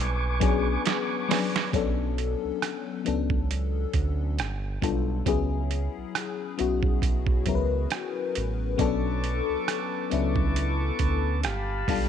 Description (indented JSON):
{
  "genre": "R&B, neo-soul",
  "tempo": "68 BPM",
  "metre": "4/4",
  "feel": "swing 56% on 16ths",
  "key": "B minor",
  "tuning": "A4 = 440 Hz",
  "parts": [
    { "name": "tonewheel organ", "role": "sustained chords", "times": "0.0-1.7, 8.8-12.1 s", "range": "G4 to D6", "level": "-32 LUFS", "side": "right 2 dB", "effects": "slow rotary speaker" },
    { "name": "round analog bass", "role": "bass", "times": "0.0-12.1 s", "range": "G1 to D2", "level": "-28 LUFS", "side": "right 1 dB", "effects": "transformer saturation" },
    { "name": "FM electric piano with soft pad layer", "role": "accompaniment", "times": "0.4-12.1 s", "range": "F#3 to B4", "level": "-29 LUFS", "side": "left 10 dB", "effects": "chorus, phaser" },
    { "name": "boom bap sampler-style drum kit", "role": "drums", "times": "0.4-12.1 s", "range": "hi-hat, kick drum, rim click, snare drum", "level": "-29 LUFS", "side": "right 4 dB", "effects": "none" }
  ],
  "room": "light reverb",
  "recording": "1960s-style stereo",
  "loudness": "-24 LUFS",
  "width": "side -8 dB against mid",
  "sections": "0.0-1.7 A section; 1.7-12.1 B section",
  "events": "drum fill 0.9-1.7",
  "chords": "0.0 Bm69; 1.7 Bm9; 4.4 G9; 5.3 F#7sus4; 8.8 Bm9; 11.4 G9"
}